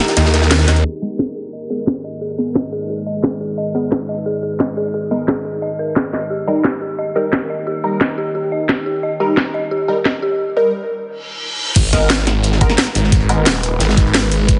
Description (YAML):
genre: dark technical drum and bass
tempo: 176 BPM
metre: 4/4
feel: straight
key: G# harmonic minor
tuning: A4 = 441 Hz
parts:
  - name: deep dark ambient pad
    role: sustained chords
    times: 0.0-14.6 s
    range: G#3 to G5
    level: -29 LUFS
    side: equal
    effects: chorus, built-in reverb, sidechain pumping
  - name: dark detuned synth bell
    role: arpeggios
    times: 0.0-10.3 s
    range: G4 to D#5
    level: -24 LUFS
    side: equal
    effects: chorus, sidechain pumping, low-pass filter, dub echo
  - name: drum and bass drum kit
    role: drums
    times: 0.0-14.6 s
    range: crash cymbal, hi-hat, ride cymbal, snare drum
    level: -20 LUFS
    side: equal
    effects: low-pass filter on hats, low-pass filter on cymbals, low-pass filter on snare, low-pass filter on room
  - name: crunchy breakbeat drum kit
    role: drums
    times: 0.1-0.8, 11.8-14.6 s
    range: hi-hat, snare drum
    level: -26 LUFS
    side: equal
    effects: high-pass filter on hats, high-pass filter on snare, high-pass filter on room
  - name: snarling distorted saw bass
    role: bass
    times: 0.2-0.8, 11.8-14.6 s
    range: D#1 to D#2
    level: -18 LUFS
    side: equal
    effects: distortion, sidechain pumping
  - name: band-passed chord stab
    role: stabs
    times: 1.0-13.4 s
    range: G3 to A#4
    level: -24 LUFS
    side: equal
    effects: phaser, analog chorus, dub echo
  - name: reverse cymbal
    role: sound effects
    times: 11.2-11.8 s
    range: none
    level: -25 LUFS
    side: equal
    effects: none
  - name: electronic kick drum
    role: drums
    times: 11.8-14.6 s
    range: none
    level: -16 LUFS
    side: equal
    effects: none
room: moderate lush hall reverb, RT60 1.7 s, digital ambience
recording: heavily compressed radio sound, low-pass filter, nothing above 10.4 kHz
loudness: -17 LUFS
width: mono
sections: 0.8-11.8 A section; 11.8-14.6 B section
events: kick drops out 0.2-0.8; band accent 0.5; filter sweep on synth bell 0.8-11.8; filter sweep on synth stab 0.8-11.8; filter sweep 0.8-11.8; break 10.4-11.8; reverse cymbal 11.2-11.8; drop 11.8-14.6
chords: 0.0 D#; 0.8 G#madd9; 6.3 D#; 11.8 G#madd9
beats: 0.17 0.51 | 0.85 1.19 1.53 1.87 | 2.21 2.55 2.90 3.24 | 3.58 3.92 4.26 4.60 | 4.94 5.28 5.62 5.96 | 6.30 6.64 6.99 7.33 | 7.67 8.01 8.35 8.69 | 9.03 9.37 9.71 10.05 | 10.39 10.74 11.08 11.42 | 11.76 12.10 12.44 12.78 | 13.12 13.46 13.80 14.14 | 14.49